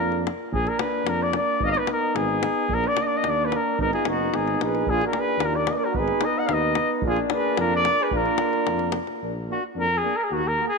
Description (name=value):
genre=balkan folk, Balkan brass band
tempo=110 BPM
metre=2/4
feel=straight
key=Bb phrygian dominant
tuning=A4 = 437 Hz
part: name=mellow trumpet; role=melody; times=0.0-10.8 s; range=Gb4 to Gb5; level=-24 LUFS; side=left 1 dB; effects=none
part: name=mellow flugelhorn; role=second line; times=0.0-0.2, 3.8-8.9 s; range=Eb4 to Eb5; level=-30 LUFS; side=right 9 dB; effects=none
part: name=bright trombone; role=accompaniment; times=0.0-10.7 s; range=D4 to Gb4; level=-30 LUFS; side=left 11 dB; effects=none
part: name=mellow euphonium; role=accompaniment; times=0.0-10.7 s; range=Bb3 to Cb4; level=-31 LUFS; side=right 12 dB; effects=none
part: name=dark tuba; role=bass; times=0.0-10.6 s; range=Gb1 to F2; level=-30 LUFS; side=equal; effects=none
part: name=davul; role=percussion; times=0.1-9.1 s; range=none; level=-31 LUFS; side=left 3 dB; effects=none
room=moderate plate reverb, RT60 3.1 s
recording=1960s-style stereo with parts hard left and right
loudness=-21 LUFS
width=side -4 dB against mid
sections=0.5-9.2 A section; 9.2-10.8 B section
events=trumpet solo 9.2-10.8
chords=0.0 Bb; 1.6 Abm; 2.7 Bb; 3.8 Abm; 4.9 Bb; 6.0 Abm; 7.0 Bb